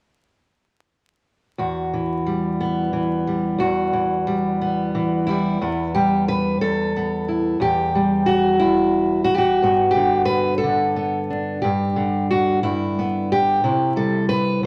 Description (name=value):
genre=folk, solo fingerstyle acoustic guitar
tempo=60 BPM (dotted quarters)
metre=6/8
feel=straight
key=unclear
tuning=A4 = 443 Hz
part: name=fingerpicked steel-string acoustic guitar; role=solo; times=1.6-14.7 s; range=E2 to B4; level=-20 LUFS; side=equal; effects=none
room=wet large studio reverb, RT60 1.1 s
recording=vinyl crackle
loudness=-20 LUFS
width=mono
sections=1.6-5.6 A section; 5.6-14.7 B section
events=none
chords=1.6 Emadd9; 9.6 Gadd9; 13.6 C